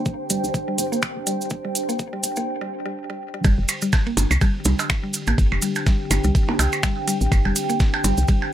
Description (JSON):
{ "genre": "minimal techno", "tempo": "124 BPM", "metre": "4/4", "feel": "swing 57% on 16ths", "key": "unclear", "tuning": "A4 = 440 Hz", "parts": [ { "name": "deep dark ambient pad", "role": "texture", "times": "0.0-8.5 s", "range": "D4 to G5", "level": "-27 LUFS", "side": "right 1 dB", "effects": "chorus, built-in reverb, sidechain pumping" }, { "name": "electronic kick drum", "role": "drums", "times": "0.1-8.4 s", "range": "none", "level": "-19 LUFS", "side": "equal", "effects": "none" }, { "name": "cabasa", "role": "percussion", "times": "0.1-8.4 s", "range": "none", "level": "-28 LUFS", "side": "right 3 dB", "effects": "none" }, { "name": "mallet-like synth pluck", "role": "riff", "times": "0.3-8.3 s", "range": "G3 to Bb3", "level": "-28 LUFS", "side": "equal", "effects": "chorus, sidechain pumping, ping-pong delay" }, { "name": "woody FM bass", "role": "bass", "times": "0.3-8.2 s", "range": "F1 to C2", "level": "-21 LUFS", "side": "equal", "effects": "sidechain pumping" }, { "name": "garage drum kit", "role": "drums", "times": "0.3-8.2 s", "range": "finger snaps, hi-hat", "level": "-24 LUFS", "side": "equal", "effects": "none" }, { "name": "dusty soul sampler-style drum kit", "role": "drums", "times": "3.4-8.4 s", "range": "ride cymbal, snare drum", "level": "-35 LUFS", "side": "right 3 dB", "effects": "sidechain pumping on cymbals, high-pass filter on cymbals, high-pass filter on snare" }, { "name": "percussion blips", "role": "percussion", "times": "3.4-8.5 s", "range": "none", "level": "-26 LUFS", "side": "right 4 dB", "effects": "none" } ], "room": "light reverb", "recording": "high-pass filter", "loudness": "-19 LUFS", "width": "side -11 dB against mid", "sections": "0.0-3.4 A section; 3.4-8.5 B section", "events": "build-up 0.0-3.4; filter sweep on synth arpeggio sound 0.0-3.4; filter sweep 0.0-3.4; break 2.5-3.4; drop 3.4-8.5", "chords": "0.0 Gsus4" }